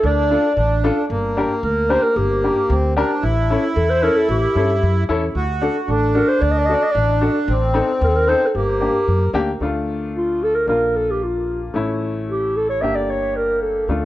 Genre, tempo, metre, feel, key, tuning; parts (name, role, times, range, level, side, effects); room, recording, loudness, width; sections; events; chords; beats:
klezmer; 113 BPM; 2/4; straight; G harmonic minor, D harmonic minor from 9.6 s; A4 = 438 Hz
dark clarinet; melody; 0.0-13.9 s; F4 to E5; -20 LUFS; equal; plate reverb, analog delay
accordion; second line; 0.0-9.3 s; Bb3 to F#4; -22 LUFS; right 1 dB; plate reverb, analog delay
upright bass; bass; 0.0-14.1 s; G1 to G2; -22 LUFS; equal
clear upright piano; accompaniment; 0.3-14.1 s; A3 to Bb4; -23 LUFS; left 3 dB; plate reverb
moderate studio reverb, RT60 0.6 s; worn, warbling old tape, cassette tape, warbly pitch drift; -16 LUFS; side -15 dB against mid
0.0-1.1 A section; 1.1-9.6 B section; 9.6-14.1 C section
0.0 Dm; 1.1 Gm; 3.2 A7; 5.4 D; 7.5 Adim; 8.5 Gm; 9.6 Dm; 10.7 Bb; 11.7 A; 12.8 Gm
| 0.04 0.57 | 1.10 1.63 | 2.16 2.69 | 3.23 3.76 | 4.29 4.82 | 5.35 5.88 | 6.42 6.95 | 7.48 8.01 | 8.54 9.08 | 9.61 10.14 | 10.68 11.21 | 11.75 12.29 | 12.82 13.36 | 13.89